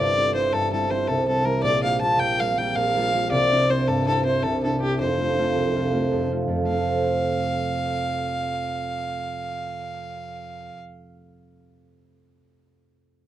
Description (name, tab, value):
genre	celtic folk, Celtic slip jig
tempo	107 BPM (dotted quarters)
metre	9/8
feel	straight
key	F major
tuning	A4 = 440 Hz
part	warm fiddle	melody	0.0-10.8 s	G4 to A5	-24 LUFS	equal	none
part	concert harp	accompaniment	0.0-11.1 s	F1 to C5	-24 LUFS	right 1 dB	none
room	small room ambience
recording	dry, close 1970s-style studio recording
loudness	-21 LUFS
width	side -12 dB against mid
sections	0.0-6.7 A section; 6.7-10.0 B section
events	none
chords	0.0 C; 1.6 Gm7/Bb; 3.3 Cadd9; 5.0 F